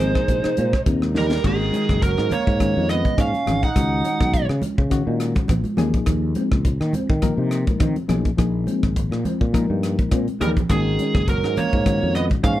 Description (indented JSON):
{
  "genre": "electric jazz fusion",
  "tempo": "104 BPM",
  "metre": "4/4",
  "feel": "swing 55% on 16ths",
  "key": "unclear",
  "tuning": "A4 = 440 Hz",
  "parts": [
    { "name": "biting lead guitar", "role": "melody", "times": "0.0-4.5, 10.4-12.6 s", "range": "G#4 to F#5", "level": "-24 LUFS", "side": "right 3 dB", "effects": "overdrive, slapback echo" },
    { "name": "bright trombone", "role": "second line", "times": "0.0-4.5, 10.4-12.6 s", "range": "D#3 to D#4", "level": "-28 LUFS", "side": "right 4 dB", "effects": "none" },
    { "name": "bright reed electric piano", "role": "accompaniment", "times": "0.0-12.5 s", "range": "D#3 to Bb4", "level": "-26 LUFS", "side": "left 5 dB", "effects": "overdrive" },
    { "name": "dark studio string section", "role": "sustained chords", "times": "0.0-1.4 s", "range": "C3 to Eb4", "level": "-34 LUFS", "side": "left 3 dB", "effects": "none" },
    { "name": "mellow electric guitar", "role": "stabs", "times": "0.0-12.6 s", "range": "A#3 to Eb4", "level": "-30 LUFS", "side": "left 3 dB", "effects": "lush chorus" },
    { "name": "sustaining fretless electric bass", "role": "bass", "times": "0.0-12.6 s", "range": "F#1 to D#3", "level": "-23 LUFS", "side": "equal", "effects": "none" },
    { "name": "crisp fusion drum kit", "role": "drums", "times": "0.2-12.6 s", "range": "crash cymbal, hi-hat, kick drum, rim click, snare drum", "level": "-23 LUFS", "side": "equal", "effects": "none" },
    { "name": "congas", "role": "percussion", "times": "0.3-12.6 s", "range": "none", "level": "-28 LUFS", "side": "right 3 dB", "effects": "none" }
  ],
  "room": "little or no reverb",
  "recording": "none",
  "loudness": "-18 LUFS",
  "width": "side -14 dB against mid",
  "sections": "0.0-1.4 A section; 1.4-12.6 B section",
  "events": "drum fill 1.2, 10.0-10.7",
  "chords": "0.0 Bb9sus4; 1.4 G#9sus4; 3.8 C#9sus4; 5.8 D#9sus4; 8.4 A#9sus4; 10.7 G#9sus4"
}